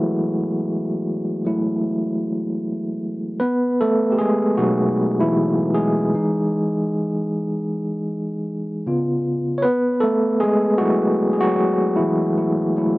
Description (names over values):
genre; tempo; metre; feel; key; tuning
R&B; 77 BPM; 4/4; swing 60% on 16ths; F# dorian; A4 = 440 Hz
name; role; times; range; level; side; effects
overdriven tine electric piano; solo; 0.0-13.0 s; B2 to C#5; -18 LUFS; equal; fast tremolo
room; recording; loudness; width
light reverb; recorded outdoors, with no room sound; -18 LUFS; side -20 dB against mid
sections
0.0-13.0 A section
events
tine electric piano solo 0.0-13.0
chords
0.0 F#m11; 3.4 B7; 6.1 Emaj7; 8.9 C#7; 9.6 F#m11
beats
| 0.28 1.06 1.84 2.62 | 3.40 4.18 4.96 5.73 | 6.51 7.29 8.07 8.85 | 9.63 10.41 11.19 11.97 | 12.75